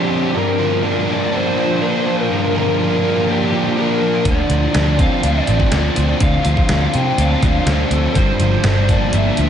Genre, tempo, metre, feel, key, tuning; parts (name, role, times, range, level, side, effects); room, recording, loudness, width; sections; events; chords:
rock, shoegaze and dream pop; 123 BPM; 4/4; straight; A4 = 440 Hz
lead guitar through a small cranked amp; melody; 0.0-9.5 s; G4 to G5; -21 LUFS; left 1 dB; overdrive, tape echo
biting overdriven guitar; riff; 0.0-9.5 s; G2 to D4; -20 LUFS; right 6 dB; reverse reverb
thick fuzz guitar; riff; 0.0-9.5 s; G2 to D4; -20 LUFS; left 5 dB; distortion, ensemble chorus
vintage muted picked electric bass; bass; 4.3-9.5 s; G1 to C3; -18 LUFS; equal
detuned 8-bit digital drum machine; drums; 4.3-9.5 s; hi-hat, kick drum, snare drum; -19 LUFS; equal
wet lush hall reverb, RT60 1.7 s, digital ambience; dreamy mix soaked in reverb, nothing above 10.5 kHz; -14 LUFS; side -9 dB against mid
0.0-9.5 A section
0.3 Gm7; 4.3 Dm7; 8.2 Gm7